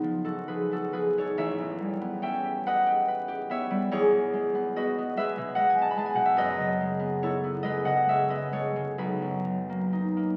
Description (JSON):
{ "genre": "classical, solo harp piece", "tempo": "47 BPM (dotted quarters)", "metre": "6/8", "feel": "uneven beats, rubato", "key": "unclear", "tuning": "A4 = 441 Hz", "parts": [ { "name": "concert harp", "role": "solo", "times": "0.0-10.4 s", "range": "A1 to B5", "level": "-28 LUFS", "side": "equal", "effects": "none" } ], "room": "wet scoring stage reverb, RT60 1.6 s", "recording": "very old 78 rpm record, vinyl crackle", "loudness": "-28 LUFS", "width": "mono", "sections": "0.0-10.4 A section", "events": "none", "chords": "0.0 C#9; 1.4 A9; 3.9 Eadd9; 6.4 F#9sus4; 9.0 Bmaj7" }